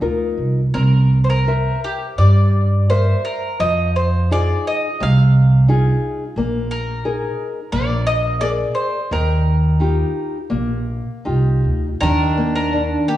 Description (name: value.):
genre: fado-style ballad.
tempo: 85 BPM.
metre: 4/4.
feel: uneven beats, rubato.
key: Eb major.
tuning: A4 = 441 Hz.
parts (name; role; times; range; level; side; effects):
nylon-string guitar; accompaniment; 0.0-13.2 s; C3 to E5; -22 LUFS; left 2 dB; none.
upright bass; bass; 0.0-12.9 s; Bb1 to G2; -16 LUFS; right 1 dB; none.
bowl-back mandolin; melody; 0.7-13.2 s; G4 to F5; -23 LUFS; equal; slapback echo.
picked twelve-string acoustic guitar; second line; 12.0-13.2 s; D4; -22 LUFS; right 3 dB; none.
room: moderate scoring stage reverb, RT60 1.8 s.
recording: worn, warbling old tape, cassette tape, warbly pitch drift, small room ambience.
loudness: -15 LUFS.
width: side -13 dB against mid.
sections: 0.0-12.0 A section; 12.0-13.2 A section.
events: none.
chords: 0.0 Bbsus4; 0.7 C7; 3.6 Fm7; 6.4 Bb7sus4; 7.7 Bb7; 9.1 Ebadd9; 12.0 Eb5.